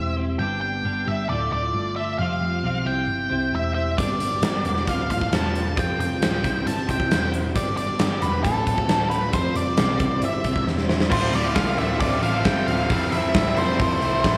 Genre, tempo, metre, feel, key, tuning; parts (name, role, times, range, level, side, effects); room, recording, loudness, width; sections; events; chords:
quiet-loud alternative rock; 134 BPM; 4/4; straight; D dorian; A4 = 440 Hz
octave-fuzz lead guitar; melody; 0.0-14.4 s; A4 to A5; -28 LUFS; equal; distortion, slapback echo, analog delay
twelve-string electric guitar; arpeggios; 0.0-11.1 s; D2 to C5; -31 LUFS; equal; analog chorus, analog delay
hollow-body short-scale picked electric bass; bass; 0.0-14.4 s; D1 to C2; -30 LUFS; equal
huge arena drum kit; drums; 4.0-14.3 s; crash cymbal, hi-hat, kick drum, snare drum; -26 LUFS; equal
overdriven electric guitar; riff; 11.1-14.4 s; D2 to F4; -26 LUFS; equal
moderate lush hall reverb, RT60 1.8 s, small room ambience; big arena sound; -23 LUFS; mono
0.0-11.1 A section; 11.1-14.4 B section
drum fill 10.7-11.1
0.4 G; 1.3 Dm; 2.2 Fsus2; 2.9 C; 4.0 G; 4.9 Dm; 5.8 Fsus2; 6.4 C; 7.5 G; 8.4 Dm; 9.3 Fsus2; 10.0 C; 11.1 Dm7; 12.9 Fmaj7